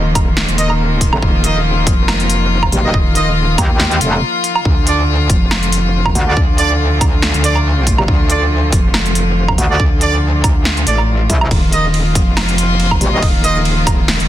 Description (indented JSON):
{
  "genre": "heavy wobble dubstep",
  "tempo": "140 BPM",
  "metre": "4/4",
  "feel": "swing 55% on 16ths, half-time",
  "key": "D phrygian",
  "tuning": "A4 = 441 Hz",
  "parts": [
    { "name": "rich chamber string section", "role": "sustained chords", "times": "0.0-14.3 s", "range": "D3 to F4", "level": "-20 LUFS", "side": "left 2 dB", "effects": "sidechain pumping" },
    { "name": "metallic wobble bass", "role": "bass", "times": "0.0-14.3 s", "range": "Eb1 to D2", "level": "-15 LUFS", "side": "equal", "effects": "chorus, overdrive" },
    { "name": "big-room dance drum kit", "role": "drums", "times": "0.2-14.3 s", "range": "hi-hat, ride cymbal, snare drum, woodblock", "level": "-19 LUFS", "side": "right 1 dB", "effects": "none" },
    { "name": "electronic kick drum", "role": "drums", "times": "0.2-14.0 s", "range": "none", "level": "-15 LUFS", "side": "equal", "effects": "none" },
    { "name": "bright brass ensemble", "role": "stabs", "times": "0.6-13.6 s", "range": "D4 to Eb5", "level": "-20 LUFS", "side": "right 3 dB", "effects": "dub echo" },
    { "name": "metallic wobble bass", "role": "bass", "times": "1.1-13.2 s", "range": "Eb1 to Eb2", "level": "-15 LUFS", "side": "equal", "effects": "chorus, overdrive" }
  ],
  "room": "little or no reverb",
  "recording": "dense, heavily limited modern master",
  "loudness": "-11 LUFS",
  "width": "side -12 dB against mid",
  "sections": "0.0-14.3 A section",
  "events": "break 4.2-4.7",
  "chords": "0.0 Ebsus2; 4.7 Dm; 11.5 Ebsus2",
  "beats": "0.37 0.80 | 1.23 1.65 2.08 2.51 | 2.94 3.37 3.80 4.22 | 4.65 5.08 5.51 5.94 | 6.37 6.80 7.22 7.65 | 8.08 8.51 8.94 9.37 | 9.80 10.22 10.65 11.08 | 11.51 11.94 12.37 12.80 | 13.22 13.65 14.08"
}